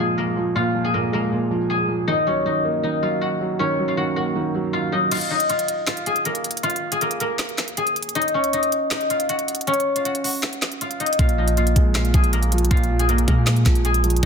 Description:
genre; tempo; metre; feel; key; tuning
hip hop, trap; 158 BPM; 4/4; half-time; Bb minor; A4 = 441 Hz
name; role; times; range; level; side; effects
guzheng; melody; 0.0-14.3 s; Bb3 to Ab5; -22 LUFS; left 2 dB; low-pass filter
dark baby grand piano; accompaniment; 0.0-5.1, 11.2-14.3 s; Bb2 to Bb3; -24 LUFS; right 2 dB; low-pass filter
trap drum kit; drums; 5.1-14.3 s; crash cymbal, handclaps, hi-hat, kick drum, snare drum; -23 LUFS; equal; none
clean 808-style bass; bass; 11.2-14.3 s; Bb1 to Bb2; -19 LUFS; equal; none
room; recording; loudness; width
light reverb; dense, heavily limited modern master; -18 LUFS; side -6 dB against mid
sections
0.0-5.1 A section; 5.1-14.3 B section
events
kick muted 5.1-11.2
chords
0.0 Bb5; 2.1 Ebm7; 5.1 Bb5; 8.2 Ebm7; 11.2 Bb5

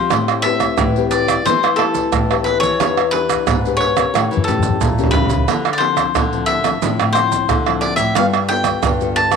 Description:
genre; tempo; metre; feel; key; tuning
samba and choro; 89 BPM; 4/4; straight; unclear; A4 = 440 Hz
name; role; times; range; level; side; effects
cavaquinho; melody; 0.0-9.4 s; A4 to A5; -19 LUFS; left 3 dB; none
nylon-string guitar; accompaniment; 0.0-9.4 s; A2 to B4; -21 LUFS; left 12 dB; none
nylon-string guitar; bass; 0.0-9.4 s; E2 to E3; -22 LUFS; left 1 dB; none
maracas, surdo, pandeiro and tamborim; percussion; 0.1-9.4 s; none; -18 LUFS; right 6 dB; none
room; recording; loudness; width
light reverb, small room reverb; 1960s-style stereo with parts hard left and right; -14 LUFS; side -6 dB against mid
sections
0.0-9.4 A section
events
drum fill 4.1-5.5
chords
0.1 Am9; 2.8 Em7; 4.1 A7b9; 5.5 Dm9; 8.2 G9

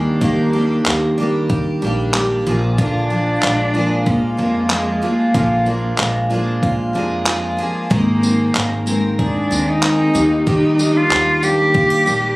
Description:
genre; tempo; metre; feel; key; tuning
acoustic pop; 94 BPM; 4/4; straight; Eb major; A4 = 439 Hz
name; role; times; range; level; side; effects
warm cello; melody; 0.0-12.4 s; Ab3 to G4; -17 LUFS; equal; none
picked steel-string acoustic guitar; accompaniment; 0.0-12.4 s; Bb2 to Bb4; -21 LUFS; equal; double-tracked left and right
picked steel-string acoustic guitar; arpeggios; 0.0-12.4 s; Eb3 to Ab4; -23 LUFS; right 2 dB; none
upright bass; bass; 0.0-12.4 s; Ab1 to F2; -23 LUFS; equal; none
dusty soul sampler-style drum kit; drums; 0.2-12.2 s; handclaps, kick drum, tambourine; -20 LUFS; equal; none
room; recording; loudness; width
light reverb; recorded on a phone in the room, studio reverb, compression; -14 LUFS; side -21 dB against mid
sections
0.0-12.4 A section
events
none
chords
0.0 Ebmaj7; 2.5 Bb7; 7.9 Abadd9; 10.2 Ebmaj7

